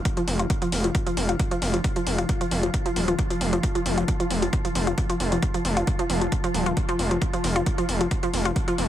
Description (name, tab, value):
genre	driving peak-time techno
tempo	134 BPM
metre	4/4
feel	straight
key	unclear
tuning	A4 = 440 Hz
part	swarming drone	drone	0.0-8.9 s	F3 to F4	-30 LUFS	left 1 dB	built-in reverb, sidechain pumping
part	electronic hi-hat	drums	0.1-8.9 s	none	-32 LUFS	left 1 dB	none
part	electronic kick drum	drums	0.1-8.7 s	none	-26 LUFS	equal	none
part	analog pluck	riff	0.2-8.7 s	F3 to F4	-27 LUFS	equal	chorus, tube saturation, sidechain pumping, dub echo
part	gritty driven synth bass	bass	0.3-8.9 s	Eb1 to F1	-25 LUFS	equal	distortion, tube saturation, sidechain pumping
room	light reverb, digital ambience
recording	heavily compressed radio sound, multiband compression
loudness	-22 LUFS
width	side -11 dB against mid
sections	0.0-8.9 A section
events	filter sweep on synth arpeggio sound 0.0-8.9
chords	none